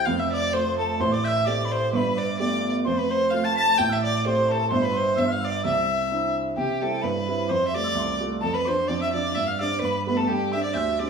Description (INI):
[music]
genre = celtic folk, Celtic polka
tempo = 129 BPM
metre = 2/4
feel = swing 54% on 8ths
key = C major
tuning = A4 = 443 Hz
[part]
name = warm fiddle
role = melody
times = 0.0-11.1 s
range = G4 to A5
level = -24 LUFS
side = equal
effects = tape echo
[part]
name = wooden whistle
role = second line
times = 0.0-11.1 s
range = G5 to B6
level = -30 LUFS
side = left 3 dB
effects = none
[part]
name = warm baby grand piano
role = accompaniment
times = 0.0-11.1 s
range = F1 to G4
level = -26 LUFS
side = right 3 dB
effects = none
[sound]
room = wet studio reverb, RT60 0.8 s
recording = studio reverb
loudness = -21 LUFS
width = side -6 dB against mid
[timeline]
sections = 0.0-6.6 A section; 6.6-11.1 B section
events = none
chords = 0.1 F; 1.0 Am7; 1.9 Gadd9; 2.9 F; 3.8 Am7; 4.7 N.C.; 5.6 Cadd9; 6.6 C; 7.5 Fadd9; 8.4 Dm7/F; 9.3 Gsus4; 9.8 Gadd9; 10.3 Gsus4